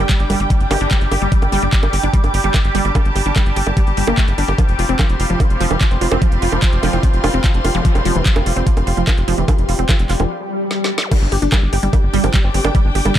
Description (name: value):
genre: psychedelic trance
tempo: 147 BPM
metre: 4/4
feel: straight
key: unclear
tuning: A4 = 440 Hz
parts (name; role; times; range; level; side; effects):
- bubbling stepped-filter texture; sustained chords; 0.0-10.3 s; G3 to G4; -24 LUFS; right 1 dB; chorus, built-in reverb, sidechain pumping
- wide unison pluck; riff; 0.0-13.2 s; E3 to G4; -22 LUFS; moving between left 6 dB and right 8 dB; auto-pan, sidechain pumping, dub echo
- tight sequencer bass; bass; 0.0-13.1 s; F1 to G1; -18 LUFS; equal; none
- clear studio string section; texture; 0.0-13.2 s; C4 to D6; -26 LUFS; left 2 dB; sidechain pumping
- electronic kick drum; drums; 0.1-13.2 s; none; -15 LUFS; equal; overdrive
- garage drum kit; drums; 0.1-13.2 s; bongos, crash cymbal, handclaps, hi-hat, snare drum; -22 LUFS; right 3 dB; overdrive
- zap and swell; sound effects; 0.7-0.8, 7.7-7.8, 10.4-11.1 s; none; -25 LUFS; left 2 dB; none
- formant-sweep wobble bass; second line; 5.9-7.6, 12.4-12.6 s; C4 to D4; -33 LUFS; left 3 dB; none
room: little or no reverb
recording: dark, warm production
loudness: -13 LUFS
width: side -11 dB against mid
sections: 0.0-11.1 A section; 11.1-13.2 B section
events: break 10.3-11.1; swell 10.4-11.1; drum fill 10.7-11.1; drop 11.1-13.2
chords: 0.0 G5; 4.6 F5; 11.1 G5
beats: 0.10 0.50 0.91 | 1.32 1.73 2.14 2.54 | 2.95 3.36 3.77 4.18 | 4.58 4.99 5.40 5.81 | 6.22 6.62 7.03 7.44 | 7.85 8.26 8.67 9.07 | 9.48 9.89 10.30 10.71 | 11.12 11.52 11.93 12.34 | 12.75 13.16